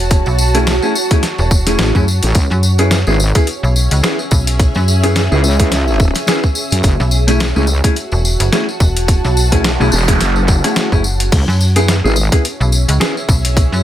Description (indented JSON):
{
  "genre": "glitch hop",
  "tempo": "107 BPM",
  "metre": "4/4",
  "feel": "swing 57% on 16ths",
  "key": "F# minor",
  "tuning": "A4 = 440 Hz",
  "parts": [
    { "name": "slap-like FM bass", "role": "bass", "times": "0.0-13.8 s", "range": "E1 to F#2", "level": "-14 LUFS", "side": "equal", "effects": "none" },
    { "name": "granular cloud pad", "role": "texture", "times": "0.0-13.8 s", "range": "C#4 to A5", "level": "-22 LUFS", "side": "right 2 dB", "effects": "built-in reverb, sidechain pumping" },
    { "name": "boom bap sampler-style drum kit", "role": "drums", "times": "0.1-13.8 s", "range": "crash cymbal, hi-hat, snare drum", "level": "-19 LUFS", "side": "left 1 dB", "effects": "studio ambience" },
    { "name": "electronic kick drum", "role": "drums", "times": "0.1-13.7 s", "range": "none", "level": "-12 LUFS", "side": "equal", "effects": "overdrive, studio ambience" },
    { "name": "tambourine", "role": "percussion", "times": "0.1-13.8 s", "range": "none", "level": "-24 LUFS", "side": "left 2 dB", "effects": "none" },
    { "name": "mellow electric guitar", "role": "stabs", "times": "0.5-13.1 s", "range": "A3 to G#4", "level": "-19 LUFS", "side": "equal", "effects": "sidechain pumping, tape echo" },
    { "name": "wobble bass", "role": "bass", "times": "2.2-12.3 s", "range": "E1 to F#2", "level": "-14 LUFS", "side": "equal", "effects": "chorus, tube saturation" },
    { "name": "noise sweep", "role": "sound effects", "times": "9.5-11.3 s", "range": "none", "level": "-24 LUFS", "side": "right 3 dB", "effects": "none" }
  ],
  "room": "little or no reverb",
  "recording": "none",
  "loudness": "-11 LUFS",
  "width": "side -12 dB against mid",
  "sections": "0.0-13.8 A section",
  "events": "noise sweep 9.5-11.3",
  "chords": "0.0 F#m9; 2.4 C#m7; 6.8 F#m9; 11.3 C#m7",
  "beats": "| 0.11 0.67 1.23 1.79 | 2.35 2.92 3.48 4.04 | 4.60 5.16 5.72 6.28 | 6.84 7.40 7.96 8.52 | 9.08 9.64 10.21 10.77 | 11.33 11.89 12.45 13.01 | 13.57"
}